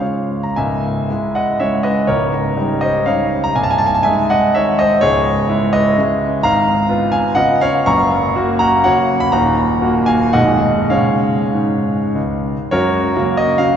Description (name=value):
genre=classical, romantic triple-time dance for piano with dotted rhythms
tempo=92-147 BPM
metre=3/4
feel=rubato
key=C# minor, F# major from 6.4 s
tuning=A4 = 440 Hz
part: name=clear concert grand piano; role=solo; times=0.0-13.8 s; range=B0 to C#6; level=-13 LUFS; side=equal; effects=none
room=wet cathedral reverb, RT60 4.7 s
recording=heard from further back in the room, nothing above 7.8 kHz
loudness=-13 LUFS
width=side -8 dB against mid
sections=0.6-12.7 A section; 12.7-13.8 B section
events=none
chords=0.0 Db; 0.6 C#m; 2.1 D#7/C#; 3.6 G#/B#; 5.0 C#m; 6.4 C#7/G#; 7.9 F#; 9.3 D#m; 10.3 G#m/B; 10.9 C#; 12.7 F#